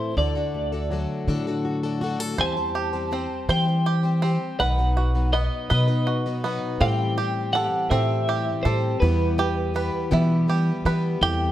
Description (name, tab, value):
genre	indie folk with a building arrangement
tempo	54 BPM (dotted quarters)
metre	6/8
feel	straight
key	E minor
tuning	A4 = 440 Hz
part	twelve-string electric guitar	melody	0.0-11.5 s	B4 to A5	-26 LUFS	equal	tremolo, slapback echo
part	fingerpicked plugged-in steel-string acoustic guitar	accompaniment	0.0-2.4 s	A2 to A4	-28 LUFS	left 2 dB	none
part	picked plugged-in twelve-string acoustic guitar	accompaniment	0.0-11.5 s	E2 to C5	-30 LUFS	left 6 dB	none
part	upright bass	bass	0.2-11.5 s	B1 to E3	-24 LUFS	equal	none
part	bluegrass banjo	arpeggios	2.4-11.5 s	B3 to C5	-29 LUFS	right 5 dB	none
part	felt-muted upright piano	accompaniment	6.8-11.5 s	A1 to B4	-32 LUFS	right 2 dB	none
room	light reverb, small room ambience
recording	none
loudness	-21 LUFS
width	side -12 dB against mid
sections	0.0-6.8 A section; 6.8-11.5 B section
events	none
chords	0.2 D; 2.4 C/E; 4.6 B; 6.8 Am7; 9.0 Em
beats	| 0.17 1.28 | 2.39 3.49 | 4.60 5.70 | 6.81 7.91 | 9.01 10.12 | 11.22